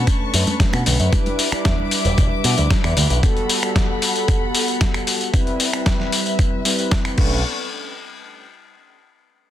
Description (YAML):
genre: nu-disco, nu disco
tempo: 114 BPM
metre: 4/4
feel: straight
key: unclear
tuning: A4 = 437 Hz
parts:
  - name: mellow synth brass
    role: accompaniment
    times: 0.0-7.4 s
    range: G3 to B4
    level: -25 LUFS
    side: right 1 dB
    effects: chorus, digital delay
  - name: dark chamber string section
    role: sustained chords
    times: 0.0-7.4 s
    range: B3 to D6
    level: -27 LUFS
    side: left 3 dB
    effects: sidechain pumping
  - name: picked electric bass with an envelope filter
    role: bass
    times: 0.0-3.2, 7.2-7.4 s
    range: E1 to B2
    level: -19 LUFS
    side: equal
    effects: none
  - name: dusty soul sampler-style drum kit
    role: drums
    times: 0.1-7.3 s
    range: crash cymbal, finger snaps, hi-hat, snare drum, tambourine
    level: -22 LUFS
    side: left 2 dB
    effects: overdrive
  - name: electronic kick drum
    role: drums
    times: 0.1-7.3 s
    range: none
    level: -18 LUFS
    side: equal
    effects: overdrive
  - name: congas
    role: percussion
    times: 0.3-3.2 s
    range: none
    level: -28 LUFS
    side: right 2 dB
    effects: none
room: digital ambience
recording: dense, heavily limited modern master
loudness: -16 LUFS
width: side -12 dB against mid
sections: 0.0-7.4 A section; 7.4-9.5 B section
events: none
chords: 0.0 Bm9; 1.1 Em7; 3.2 Gmaj9; 5.3 Cmaj7; 7.2 Bm9; 7.4 N.C.